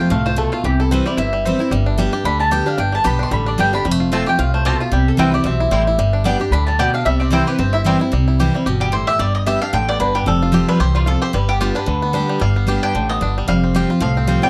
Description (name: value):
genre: bluegrass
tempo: 224 BPM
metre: 4/4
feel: swing 55% on 8ths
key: C major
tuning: A4 = 440 Hz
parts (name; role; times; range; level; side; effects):
- bluegrass banjo; melody; 0.0-14.5 s; D3 to G4; -27 LUFS; equal; none
- mandolin; melody; 0.0-7.8 s; F4 to C6; -23 LUFS; equal; none
- picked steel-string acoustic guitar; accompaniment; 0.0-14.5 s; E2 to G4; -22 LUFS; equal; none
- upright bass; bass; 0.1-14.4 s; F1 to D2; -22 LUFS; equal; none
- mandolin; stabs; 4.1-14.5 s; B3 to A5; -23 LUFS; equal; none
room: light reverb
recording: dry, close 1970s-style studio recording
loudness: -17 LUFS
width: mono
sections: 0.0-8.1 A section; 8.1-14.5 B section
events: mandolin solo 8.1-14.5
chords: 0.0 F; 0.6 C; 1.7 G; 3.9 F; 4.9 C; 6.0 G; 7.1 C; 9.2 G; 10.3 Fadd9; 11.3 G; 13.5 Fadd9